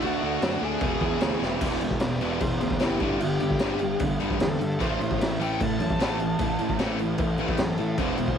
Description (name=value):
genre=punk rock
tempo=151 BPM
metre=4/4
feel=straight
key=unclear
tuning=A4 = 441 Hz
part: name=bluesy overdriven lead guitar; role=melody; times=0.0-8.4 s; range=E4 to A5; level=-31 LUFS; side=left 1 dB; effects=distortion, ping-pong delay
part: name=crunchy overdriven guitar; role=riff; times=0.0-8.4 s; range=E2 to D4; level=-31 LUFS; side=right 11 dB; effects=none
part: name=distorted electric guitar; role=riff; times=0.0-8.4 s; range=E2 to D4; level=-31 LUFS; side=left 13 dB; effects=overdrive
part: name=distorted electric guitar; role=riff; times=0.0-8.4 s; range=E2 to D4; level=-33 LUFS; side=right 1 dB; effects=overdrive
part: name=fuzz picked electric bass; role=bass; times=0.0-8.3 s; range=E1 to A2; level=-32 LUFS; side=equal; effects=overdrive
part: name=raw garage drum kit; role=drums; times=0.0-8.4 s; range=crash cymbal, kick drum, snare drum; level=-28 LUFS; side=equal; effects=none
room=light reverb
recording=none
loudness=-23 LUFS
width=side -8 dB against mid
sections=0.0-1.6 A section; 1.6-8.4 B section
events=drum fill 1.4; lead electric guitar solo 1.6-8.4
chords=0.0 D; 0.8 E; 3.0 G5; 4.8 A5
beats=| 0.02 0.42 0.82 1.22 | 1.62 2.02 2.41 2.81 | 3.21 3.61 4.01 4.41 | 4.80 5.20 5.60 6.00 | 6.40 6.79 7.19 7.59 | 7.99